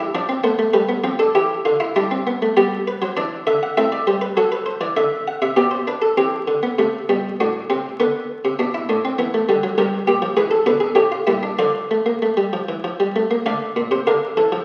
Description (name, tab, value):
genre	classical, baroque-style 4-part fugue for harpsichord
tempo	100 BPM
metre	3/4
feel	straight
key	C major, D minor from 9.8 s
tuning	A4 = 440 Hz
part	buff-stop harpsichord	solo	0.0-14.6 s	G2 to F#5	-19 LUFS	equal	none
room	wet recital hall reverb, RT60 1.2 s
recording	very old 78 rpm record, vinyl crackle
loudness	-19 LUFS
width	mono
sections	0.0-6.2 A section; 6.2-13.5 B section; 13.5-14.6 C section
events	none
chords	0.2 Dm/F; 0.8 G7; 2.0 C/G; 2.6 G; 3.8 Am; 4.4 D7; 5.6 G/B; 6.2 C; 7.4 F#dim/A; 8.0 Bm; 9.2 Em7; 9.8 Gm7; 10.4 G#dim; 11.0 A7; 11.6 Dm